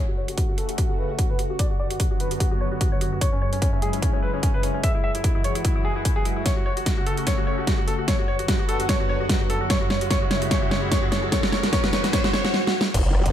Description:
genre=heavy wobble dubstep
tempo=148 BPM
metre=4/4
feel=swing 54% on 16ths, half-time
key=F# minor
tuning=A4 = 440 Hz
part: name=bright concert grand piano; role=melody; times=0.0-12.5 s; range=C#4 to E5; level=-28 LUFS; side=left 1 dB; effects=low-pass filter, tape echo
part: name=lush unison pad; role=sustained chords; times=0.0-13.3 s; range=F#2 to G#4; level=-29 LUFS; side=equal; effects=chorus, phaser, sidechain pumping
part: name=dubstep drum kit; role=drums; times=0.3-13.3 s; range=crash cymbal, hi-hat, rim click, snare drum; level=-26 LUFS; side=right 1 dB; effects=small room reverb
part: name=electronic kick drum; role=drums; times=0.4-13.3 s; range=none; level=-23 LUFS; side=equal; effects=small room reverb
part: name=riser, swell and impact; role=sound effects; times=8.4-13.3 s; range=none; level=-31 LUFS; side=equal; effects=none
part: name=formant-sweep wobble bass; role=bass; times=12.9-13.3 s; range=F#1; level=-21 LUFS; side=equal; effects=chorus, overdrive
room=light reverb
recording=none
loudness=-20 LUFS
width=side -10 dB against mid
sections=0.0-12.9 A section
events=build-up 0.0-12.9; filter sweep on grand piano 0.0-12.9; drum fill 6.5-12.5, 12.5-12.9; riser 8.4-12.5; swell 12.1-12.9; impact 12.9-13.3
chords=0.0 F#m; 1.6 Bm/F#; 3.2 C#m/F#; 4.8 Eadd9/F#; 6.5 F#m; 8.1 Bm/F#; 9.7 C#m/F#; 11.3 Eadd9/F#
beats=0.38 0.78 1.19 | 1.59 2.00 2.40 2.81 | 3.21 3.62 4.02 4.43 | 4.83 5.24 5.65 6.05 | 6.46 6.86 7.27 7.67 | 8.08 8.48 8.89 9.29 | 9.70 10.11 10.51 10.92 | 11.32 11.73 12.13 12.54 | 12.94

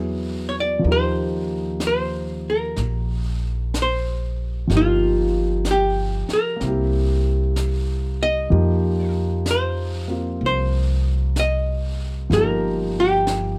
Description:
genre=jazz ballad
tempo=63 BPM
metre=4/4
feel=swing 66% on 8ths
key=unclear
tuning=A4 = 440 Hz
part: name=dark concert grand piano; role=accompaniment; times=0.0-13.6 s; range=F3 to G#4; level=-28 LUFS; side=equal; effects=none
part: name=upright bass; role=bass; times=0.0-13.6 s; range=G1 to F2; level=-25 LUFS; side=equal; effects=none
part: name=archtop guitar, miked and amplified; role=melody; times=0.5-13.6 s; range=F4 to Eb5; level=-24 LUFS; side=equal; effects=none
part: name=jazz brush drum kit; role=drums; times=0.8-13.6 s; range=brushed snare drum, hi-hat, snare drum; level=-37 LUFS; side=equal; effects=none
room=little or no reverb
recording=none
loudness=-21 LUFS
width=mono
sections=0.0-13.6 A section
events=none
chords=0.0 E; 0.8 Eb6; 4.7 Ebadd9/G; 6.6 C7; 8.5 Fsus2; 12.3 Gm7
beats=| 0.84 1.80 2.77 3.73 | 4.69 5.65 6.61 7.56 | 8.51 9.46 10.41 11.37 | 12.32 13.28

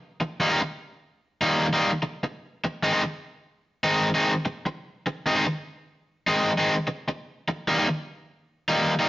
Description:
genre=blues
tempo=99 BPM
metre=4/4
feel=swing 66% on 8ths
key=Eb major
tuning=A4 = 440 Hz
part: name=cranked stack guitar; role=solo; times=0.2-9.1 s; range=Eb3 to Eb4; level=-22 LUFS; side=equal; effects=overdrive
room=moderate stone room reverb, RT60 1.1 s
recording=rough rehearsal-room recording, warm saturation, nothing above 7.4 kHz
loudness=-23 LUFS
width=side -16 dB against mid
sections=0.0-9.1 A section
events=none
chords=0.0 Eb; 2.4 Ab; 7.3 Eb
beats=| 0.02 0.62 1.23 1.83 | 2.44 3.05 3.65 4.26 | 4.86 5.47 6.07 6.68 | 7.28 7.88 8.49

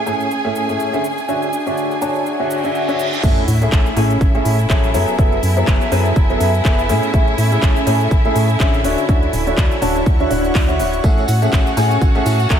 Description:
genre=piano house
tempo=123 BPM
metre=4/4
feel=swing 56% on 16ths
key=A major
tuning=A4 = 440 Hz
part: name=rich studio string section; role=sustained chords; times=0.0-12.6 s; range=E4 to G#5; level=-24 LUFS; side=right 1 dB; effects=sidechain pumping
part: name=airy breathy pad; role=texture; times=0.0-12.6 s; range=A3 to G#5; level=-24 LUFS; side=right 1 dB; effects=chorus, sidechain pumping
part: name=clear upright piano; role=riff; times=0.1-12.6 s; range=A2 to A5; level=-19 LUFS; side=left 1 dB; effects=wide subtle chorus, sidechain pumping, analog delay
part: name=house drum kit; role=drums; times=0.1-12.6 s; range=cabasa, crash cymbal, handclaps, hi-hat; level=-27 LUFS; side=equal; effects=studio reverb
part: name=reverse cymbal and sub drop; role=sound effects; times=2.5-5.2 s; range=none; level=-27 LUFS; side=right 1 dB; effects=none
part: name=organ-like FM bass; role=bass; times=3.2-12.6 s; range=D1 to A2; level=-18 LUFS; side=equal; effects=sidechain pumping
part: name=electronic kick drum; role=drums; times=3.2-12.6 s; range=none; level=-15 LUFS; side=equal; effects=studio reverb
part: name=tambourine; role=percussion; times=11.0-12.6 s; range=none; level=-35 LUFS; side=right 4 dB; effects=none
room=moderate lush hall reverb, RT60 2.0 s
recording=dreamy mix soaked in reverb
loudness=-14 LUFS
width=side -8 dB against mid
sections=0.0-3.2 A section; 3.2-12.6 B section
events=reverse cymbal 2.5-3.2; drop 3.2-12.6; impact 3.2-5.2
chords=0.0 Amaj7; 1.0 Dmaj9; 3.2 Amaj7; 4.9 F#m11; 6.9 Amaj7; 8.8 Dmaj9; 11.0 Amaj7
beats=0.31 0.80 | 1.28 1.77 2.26 2.75 | 3.23 3.72 4.21 4.70 | 5.18 5.67 6.16 6.65 | 7.14 7.62 8.11 8.60 | 9.09 9.58 10.06 10.55 | 11.04 11.53 12.02 12.50

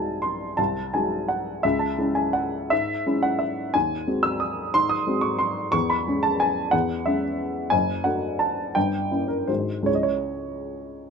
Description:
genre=classical, piano waltz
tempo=145-192 BPM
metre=3/4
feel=rubato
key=C# minor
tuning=A4 = 443 Hz
part: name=warm upright piano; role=solo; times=0.0-11.1 s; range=F#1 to E6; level=-22 LUFS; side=equal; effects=none
room=light reverb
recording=minimal, uncompressed stereo recording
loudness=-22 LUFS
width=side -6 dB against mid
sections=0.0-11.1 A section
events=none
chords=0.0 G#7/B#; 1.6 C#m; 3.7 G#7/D#; 5.7 C#m/E; 7.7 D/F#; 8.8 Gdim7; 9.5 G#7; 9.9 C#m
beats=0.23 | 0.58 0.94 1.29 | 1.64 1.98 2.35 | 2.71 3.06 3.42 | 3.75 4.07 4.40 | 4.73 5.06 5.40 | 5.74 6.07 6.41 | 6.73 7.06 7.40 | 7.72 8.06 8.41 | 8.76 9.11 9.48 | 9.87 10.28 10.69 | 11.10

